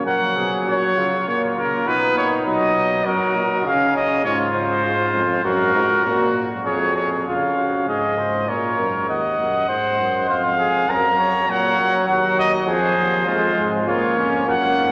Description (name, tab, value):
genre	classical, imitative canzona for brass ensemble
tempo	100 BPM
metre	3/4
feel	straight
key	F# major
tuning	A4 = 445 Hz
part	warm trumpet	melody	0.0-14.9 s	A#4 to A#5	-23 LUFS	equal	none
part	warm trumpet	second line	0.0-14.9 s	C#4 to Eb5	-25 LUFS	equal	none
part	bright trombone	accompaniment	0.0-3.6, 10.9-14.9 s	F3 to B3	-27 LUFS	equal	none
part	warm bass trombone	bass	0.1-14.9 s	C#2 to C#3	-29 LUFS	equal	none
room	wet cathedral reverb, RT60 5.2 s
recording	none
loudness	-19 LUFS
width	mono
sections	0.1-7.3 A section; 7.3-14.9 B section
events	none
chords	0.1 F#/A#; 1.3 A#m; 1.9 B; 3.1 F#; 3.7 C#; 4.8 Fm/Ab; 5.4 F#; 6.7 C#/E#; 7.3 C#; 8.5 F#/A#; 9.1 Cdim/Eb; 10.3 Fm; 10.9 F#; 12.1 D#m; 12.7 Fm; 13.9 A#m/C#